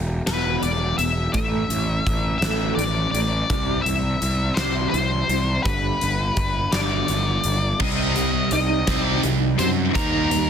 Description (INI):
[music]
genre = quiet-loud alternative rock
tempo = 56 BPM (dotted quarters)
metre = 6/8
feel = straight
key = unclear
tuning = A4 = 439 Hz
[part]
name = fuzz picked electric bass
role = bass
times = 0.0-10.5 s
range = E1 to F#2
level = -24 LUFS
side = equal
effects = overdrive
[part]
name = octave-fuzz lead guitar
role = melody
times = 0.3-10.5 s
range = A#4 to E5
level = -24 LUFS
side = left 3 dB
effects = distortion, slapback echo
[part]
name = electric guitar through a small old amp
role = arpeggios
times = 0.3-10.5 s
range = E2 to Eb4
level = -28 LUFS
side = right 2 dB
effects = tremolo
[part]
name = huge arena drum kit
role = drums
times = 0.3-10.5 s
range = crash cymbal, hi-hat, kick drum, snare drum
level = -26 LUFS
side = equal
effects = none
[part]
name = high-gain distorted guitar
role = riff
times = 7.8-10.5 s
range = C3 to C4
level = -25 LUFS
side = right 15 dB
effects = distortion
[part]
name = tight distorted guitar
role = riff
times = 7.8-10.5 s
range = C3 to D#4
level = -26 LUFS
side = left 13 dB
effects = distortion
[sound]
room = light reverb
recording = dense, heavily limited modern master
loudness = -19 LUFS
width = side -8 dB against mid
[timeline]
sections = 0.0-7.8 A section; 7.8-10.5 B section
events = none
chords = 0.0 E5; 1.3 A5; 3.5 C; 5.6 G; 7.8 Cm; 9.9 D#